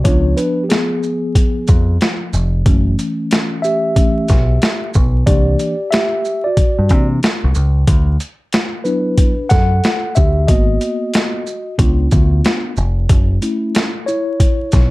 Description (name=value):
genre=hip hop, jazz-hop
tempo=92 BPM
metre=4/4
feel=swing 65% on 16ths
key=unclear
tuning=A4 = 440 Hz
part: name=mellow tine electric piano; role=accompaniment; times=0.0-14.9 s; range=E3 to F#5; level=-18 LUFS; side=left 1 dB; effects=medium stereo tremolo
part: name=boom bap sampler-style drum kit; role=drums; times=0.0-14.9 s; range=hi-hat, kick drum, shaker, snare drum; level=-14 LUFS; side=equal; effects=overdrive
part: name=deep dub picked electric bass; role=bass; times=0.1-14.9 s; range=E#1 to C3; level=-14 LUFS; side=equal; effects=none
room=light reverb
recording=vinyl crackle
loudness=-13 LUFS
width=side -20 dB against mid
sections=0.0-14.9 A section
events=tine electric piano solo 0.0-14.9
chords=0.1 C#7b9; 2.7 F#m7 (rootless); 5.3 C9; 7.9 D69; 10.5 G#m9; 11.8 C#7b9; 13.1 F#m7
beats=| 0.05 0.70 1.35 2.01 | 2.66 3.31 3.96 4.62 | 5.27 5.92 6.57 7.22 | 7.88 8.53 9.18 9.83 | 10.49 11.14 11.79 12.44 | 13.10 13.75 14.40